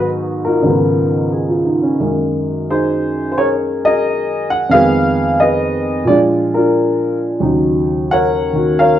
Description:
solo jazz; 89 BPM; 4/4; swing 69% on 8ths; A4 = 436 Hz
dark upright piano; solo; 0.0-9.0 s; Db2 to Gb5; -13 LUFS; equal
wet large studio reverb, RT60 1.1 s; band playing live in one room, nothing above 10.7 kHz; -13 LUFS; side -11 dB against mid
0.0-2.0 A section; 2.0-9.0 B section
0.0 Abm7; 0.6 Db13; 2.0 Gb69; 4.7 Fm7b5; 6.1 Bb7; 7.4 Ebm9

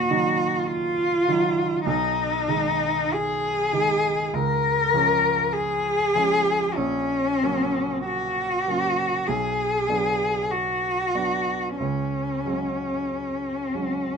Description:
classical, romantic duo for cello and grand piano; 46-52 BPM; 4/4; rubato; A4 = 440 Hz
warm cello; melody; 0.0-14.2 s; C#4 to A#4; -22 LUFS; left 2 dB
warm baby grand piano; accompaniment; 0.0-14.2 s; A#1 to Eb4; -28 LUFS; right 5 dB
little or no reverb; close, detailed microphones; -21 LUFS; side -6 dB against mid
0.0-14.2 A section
0.0 Ebm; 1.9 G#m/B; 4.3 C#; 6.8 F#/A#; 9.3 Bm; 11.8 C#sus4

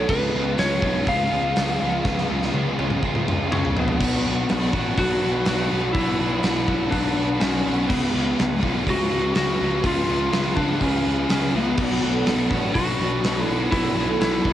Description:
rock, shoegaze and dream pop; 123 BPM; 4/4; straight; A4 = 440 Hz
lightly driven lead guitar; melody; 0.0-14.5 s; B3 to E#5; -24 LUFS; left 1 dB; cassette tape, tape echo
fingerpicked twelve-string acoustic guitar; arpeggios; 0.0-4.0, 11.8-14.5 s; E#3 to G#4; -32 LUFS; right 8 dB
biting overdriven guitar; riff; 0.0-14.5 s; B2 to F#4; -27 LUFS; left 8 dB; ensemble chorus, cassette tape
biting overdriven guitar; riff; 0.0-14.5 s; B2 to B4; -28 LUFS; right 8 dB; reverse reverb, cassette tape
fuzz picked electric bass; bass; 0.0-14.5 s; A1 to C#2; -27 LUFS; equal; overdrive
gated 80s drum kit; drums; 0.1-14.5 s; crash cymbal, hi-hat, kick drum, snare drum, toms; -26 LUFS; equal; cassette tape
light reverb; home recording on cassette; -19 LUFS; side -12 dB against mid
0.0-4.0 A section; 4.0-14.5 A section
drum fill 2.1-4.0
0.1 C#7; 4.0 Bm; 7.9 C#7; 11.8 Bm7

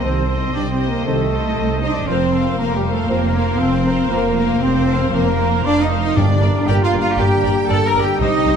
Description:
cinematic, heroic adventure film score; 117 BPM; 4/4; straight; A4 = 441 Hz
rich symphonic violin section; melody; 0.0-8.6 s; C5 to F5; -29 LUFS; left 4 dB
hollow flute section; second line; 0.0-8.6 s; G4 to Bb5; -28 LUFS; left 3 dB
mellow cor anglais; second line; 0.0-8.6 s; F4 to Eb5; -29 LUFS; right 4 dB
rich symphonic violin section; second line; 0.0-8.6 s; G4 to Bb5; -29 LUFS; left 4 dB
rich symphonic viola section; accompaniment; 0.0-8.6 s; G4 to C5; -30 LUFS; equal
clear trombone section; sustained chords; 0.0-8.6 s; C3 to C4; -27 LUFS; right 3 dB
warm French horn section; sustained chords; 0.0-8.6 s; Bb3 to C5; -27 LUFS; left 3 dB
concert harp; arpeggios; 0.0-8.6 s; F2 to D5; -26 LUFS; left 9 dB
warm trumpet; stabs; 0.0-8.6 s; G4 to Bb5; -27 LUFS; right 1 dB
dark symphonic cello section; bass; 0.0-8.6 s; G3 to Bb4; -20 LUFS; right 2 dB
warm symphonic double bass section; bass; 0.0-8.5 s; F1 to C2; -21 LUFS; right 2 dB
timpani; percussion; 6.2-6.9 s; G2; -21 LUFS; left 1 dB
moderate recital hall reverb, RT60 1.4 s; dark, warm production; -15 LUFS; side -7 dB against mid
0.0-8.6 A section
0.0 Cm; 2.1 Fsus4; 6.2 Gm

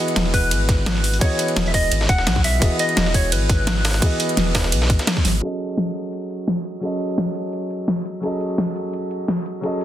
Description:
liquid drum and bass; 171 BPM; 4/4; swing 54% on 16ths; F# dorian; A4 = 440 Hz
dark baby grand piano; accompaniment; 0.0-9.8 s; E3 to D#5; -25 LUFS; equal; ping-pong delay
pop drum kit; drums; 0.1-9.8 s; hi-hat, ride cymbal, snare drum; -23 LUFS; equal; overdrive
warm sub bass; bass; 0.2-5.4 s; E1 to B1; -21 LUFS; equal
dusty soul sampler-style drum kit; drums; 0.2-5.3 s; hi-hat, snare drum; -26 LUFS; right 1 dB; high-pass filter on snare, high-pass filter on hats
mellow electric guitar; melody; 0.3-5.1 s; B4 to F#5; -24 LUFS; equal; tape echo
electronic kick drum; drums; 0.3-5.2 s; -19 LUFS; equal; overdrive
light reverb, digital ambience; dense, heavily limited modern master, low-pass filter; -18 LUFS; side -12 dB against mid
0.0-5.4 A section; 5.4-9.8 B section
drop 0.0-5.4; filter sweep 5.4-9.8
0.0 Emaj7; 5.4 F#m69

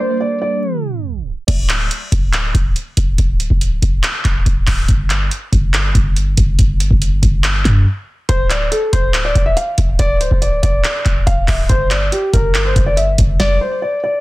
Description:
hip hop, trap; 141 BPM; 4/4; half-time; A4 = 436 Hz
dark concert grand piano; melody; 0.0-1.4, 8.3-14.2 s; G4 to F5; -18 LUFS; equal; low-pass filter, digital delay
mellow tine electric piano; accompaniment; 0.0-1.5 s; G3 to Bb4; -25 LUFS; right 5 dB; low-pass filter
hollow soft pad; sustained chords; 0.0-1.4 s; G3 to Bb4; -25 LUFS; right 1 dB; ensemble chorus, low-pass filter
clean 808-style bass; bass; 1.5-13.4 s; C1 to G2; -16 LUFS; equal
booming analog drum machine; drums; 1.5-13.6 s; crash cymbal, handclaps, hi-hat, kick drum, snare drum; -16 LUFS; equal
little or no reverb; dense, heavily limited modern master, tape stop; -13 LUFS; side -19 dB against mid
0.0-1.5 A section; 1.5-14.2 B section
tape stop 0.6-1.5; break 7.9-8.3; stop 13.4-14.2
0.0 Gm; 1.5 N.C.; 11.7 G5

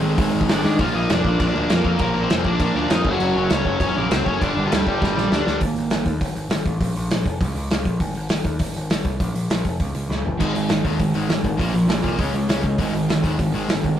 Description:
punk rock; 200 BPM; 4/4; straight; A4 = 439 Hz
overdriven electric guitar; melody; 0.0-5.6 s; F3 to Eb5; -24 LUFS; left 1 dB
crunchy overdriven guitar; riff; 0.0-5.6, 10.4-14.0 s; Gb2 to Db4; -27 LUFS; right 2 dB
distorted electric guitar; riff; 0.0-6.1, 10.4-14.0 s; Gb2 to Db4; -26 LUFS; left 3 dB; overdrive
sludgy distorted guitar; riff; 0.0-6.1, 10.4-14.0 s; Gb2 to Db4; -27 LUFS; right 5 dB; overdrive
growling picked electric bass; bass; 0.0-14.0 s; F1 to Ab2; -25 LUFS; equal; overdrive
loose indie drum kit; drums; 0.2-13.9 s; crash cymbal, hi-hat, kick drum, snare drum, toms; -22 LUFS; equal
light reverb; rough rehearsal-room recording, tube saturation; -18 LUFS; side -10 dB against mid
0.8-5.6 A section; 5.6-14.0 B section
drum fill 0.6, 5.0-5.6, 10.1
0.0 Ab; 0.8 Bb; 3.1 Gb; 4.4 Gm; 5.6 Ab5; 6.8 Bb5; 7.4 Bbm; 8.0 N.C.; 9.2 Bb5; 9.8 N.C.; 10.4 Ab5; 11.6 Bb5; 12.2 Db5; 12.8 Ab5

